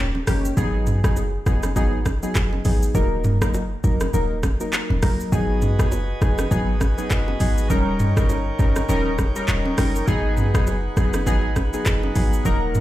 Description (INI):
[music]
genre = afrobeats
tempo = 101 BPM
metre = 4/4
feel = swing 58% on 16ths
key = G# minor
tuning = A4 = 440 Hz
[part]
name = warm analog keys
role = accompaniment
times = 0.0-12.8 s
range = D#3 to A#4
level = -24 LUFS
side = left 1 dB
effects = chorus
[part]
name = clean 808-style bass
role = bass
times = 0.0-12.8 s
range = D#1 to G#1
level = -22 LUFS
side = equal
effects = none
[part]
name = bongos and congas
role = percussion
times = 0.1-12.8 s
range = none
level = -31 LUFS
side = right 3 dB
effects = none
[part]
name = afro-pop drum kit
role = drums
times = 0.3-12.8 s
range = handclaps, hi-hat, kick drum, rim click, shaker, toms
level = -23 LUFS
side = equal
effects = overdrive
[part]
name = chamber organ, sparkling flutes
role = sustained chords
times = 5.3-12.8 s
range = D#4 to G#5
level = -30 LUFS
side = right 1 dB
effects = none
[sound]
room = little or no reverb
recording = played on a big sound system in a bare room, large studio reverb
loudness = -18 LUFS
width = side -15 dB against mid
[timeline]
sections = 0.0-12.8 A section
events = none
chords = 0.0 D#7; 0.6 G#m7; 2.9 D#m; 5.3 G#m7; 7.7 D#7; 10.1 G#m7